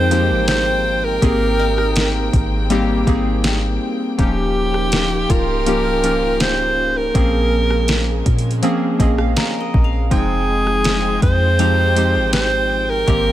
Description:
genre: contemporary R&B.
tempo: 81 BPM.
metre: 4/4.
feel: straight.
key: F minor.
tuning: A4 = 440 Hz.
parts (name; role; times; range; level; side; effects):
bright alto saxophone; melody; 0.0-13.3 s; G4 to C5; -19 LUFS; right 2 dB; digital delay.
warm analog keys; accompaniment; 0.0-13.3 s; Eb3 to Bb5; -21 LUFS; left 1 dB; chorus.
warm studio string section; sustained chords; 0.0-13.3 s; Db3 to G5; -27 LUFS; left 1 dB; none.
soft 808-style bass; bass; 0.0-13.3 s; Db1 to Bb2; -20 LUFS; equal; none.
qanun; texture; 0.0-13.3 s; Bb3 to C6; -31 LUFS; left 2 dB; digital delay.
smooth R&B drum kit; drums; 0.1-13.2 s; hi-hat, kick drum, rim click, snare drum; -19 LUFS; equal; none.
room: small room ambience.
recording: none.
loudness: -14 LUFS.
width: side -13 dB against mid.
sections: 0.0-13.3 A section.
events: synth keys fill 8.6-10.1.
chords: 0.0 Fm9; 1.2 Abmaj9; 4.2 Eb9; 7.1 Bbm9; 10.1 Fm9.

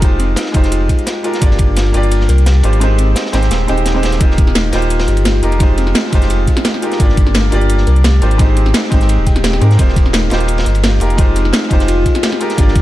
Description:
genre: liquid drum and bass.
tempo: 172 BPM.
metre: 4/4.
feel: straight.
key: unclear.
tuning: A4 = 442 Hz.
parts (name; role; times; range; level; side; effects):
bright grand piano; accompaniment; 0.0-12.8 s; Ab3 to D5; -19 LUFS; equal; digital delay.
harp-like synth pluck; arpeggios; 0.0-12.7 s; C4 to G5; -22 LUFS; left 2 dB; chorus, cassette tape, dub echo.
warm sub bass; bass; 0.0-12.8 s; Eb1 to Ab2; -13 LUFS; equal; tube saturation.
crunchy breakbeat drum kit; drums; 0.0-12.8 s; ride cymbal, snare drum; -24 LUFS; equal; high-pass filter on cymbals, high-pass filter on snare, high-pass filter on room.
drum and bass drum kit; drums; 0.0-12.8 s; hi-hat, snare drum; -19 LUFS; equal; none.
electronic kick drum; drums; 0.0-1.7, 4.2-12.8 s; none; -12 LUFS; equal; none.
room: light reverb, small room ambience.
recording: dark, warm production.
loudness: -10 LUFS.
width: side -15 dB against mid.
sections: 0.0-12.8 A section.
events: kick drops out 2.8-4.2.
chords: 0.0 Fm9; 1.4 Gm7; 2.8 Abmaj7; 4.2 Eb69; 5.6 Fm9; 7.0 Gm7; 8.4 Abmaj7; 9.8 Eb69; 11.2 Fm9.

